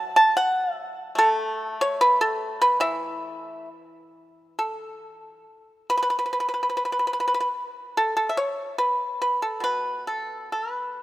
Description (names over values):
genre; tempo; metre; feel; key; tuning
chinese traditional, Chinese solo plucked strings; 65-75 BPM; 2/4; rubato; unclear; A4 = 439 Hz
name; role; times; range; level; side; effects
pipa; solo; 0.0-11.0 s; B2 to A5; -22 LUFS; equal; none
room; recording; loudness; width
moderate lush hall reverb, RT60 2.6 s; rough home demo mix; -22 LUFS; side -16 dB against mid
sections
0.0-4.6 A section; 4.6-11.0 B section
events
none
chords
none